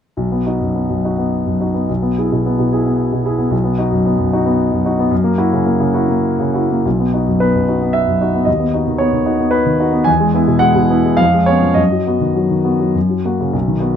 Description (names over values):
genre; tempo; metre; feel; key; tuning
classical, romantic character piece for solo piano; 95-114 BPM; 3/4; rubato; B major; A4 = 440 Hz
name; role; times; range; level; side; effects
warm concert grand piano; solo; 0.2-14.0 s; B1 to G#5; -13 LUFS; equal; none
room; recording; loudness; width
light reverb; dark, warm production; -13 LUFS; side -8 dB against mid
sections
0.2-6.8 A section; 6.8-14.0 B section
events
none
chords
0.2 B; 1.9 E/B; 3.5 B; 5.1 F#7; 6.8 B; 8.5 B/D#; 10.1 E; 11.2 C#7/E#; 11.8 B/F#; 13.0 F#